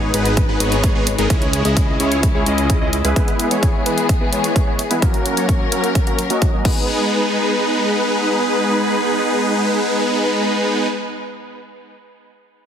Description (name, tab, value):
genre	EDM, festival progressive house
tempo	129 BPM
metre	4/4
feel	straight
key	G# minor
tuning	A4 = 440 Hz
part	warm studio string section	sustained chords	0.0-10.9 s	C#3 to B4	-24 LUFS	left 4 dB	sidechain pumping
part	supersaw chords	riff	0.0-10.9 s	F#3 to D#5	-18 LUFS	equal	sidechain pumping, low-pass filter, tape echo
part	fat analog bass	bass	0.0-3.1 s	G#1 to C#2	-21 LUFS	equal	sidechain pumping
part	big-room dance drum kit	drums	0.1-6.7 s	crash cymbal, hi-hat	-25 LUFS	equal	small room reverb
part	electronic kick drum	drums	0.4-6.7 s	none	-18 LUFS	equal	small room reverb
room	moderate lush hall reverb, RT60 1.8 s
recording	heavily compressed radio sound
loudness	-15 LUFS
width	side -8 dB against mid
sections	0.0-6.9 A section; 6.9-10.6 B section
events	filter sweep on supersaw synth 0.0-6.9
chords	0.0 G#m; 1.3 C#m; 3.2 E; 5.0 F#; 6.7 G#m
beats	0.37 0.84 | 1.30 1.77 2.23 2.70 | 3.16 3.63 4.09 4.56 | 5.02 5.49 5.95 6.42 | 6.88 7.35 7.81 8.28 | 8.74 9.21 9.67 10.14